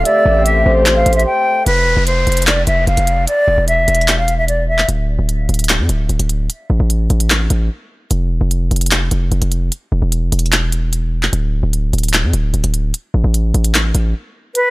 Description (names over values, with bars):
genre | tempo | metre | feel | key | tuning
hip hop, trap | 149 BPM | 4/4 | half-time | unclear | A4 = 439 Hz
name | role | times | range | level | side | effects
breathy silver concert flute | melody | 0.0-4.9, 14.6-14.7 s | B4 to G5 | -15 LUFS | left 1 dB | tape echo
breathy flute-like synth lead | second line | 0.0-1.6 s | C5 to E5 | -18 LUFS | right 1 dB | chorus, tape echo
muted studio string section | sustained chords | 0.0-1.6 s | A3 to G4 | -22 LUFS | left 2 dB | none
hard-hitting 808-style bass | bass | 0.0-14.1 s | D1 to F2 | -15 LUFS | equal | none
trap drum kit | drums | 0.1-14.6 s | handclaps, hi-hat | -17 LUFS | equal | none
downlifter | sound effects | 1.7-4.9 s | none | -28 LUFS | equal | none
room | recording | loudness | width
little or no reverb | none | -13 LUFS | side -20 dB against mid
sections
0.0-1.7 A section; 1.7-14.7 B section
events
break 1.3-1.7, 4.9-8.1, 14.1-14.6; kick muted 14.6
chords
0.1 Am7; 1.7 Dmadd9/E; 4.9 N.C.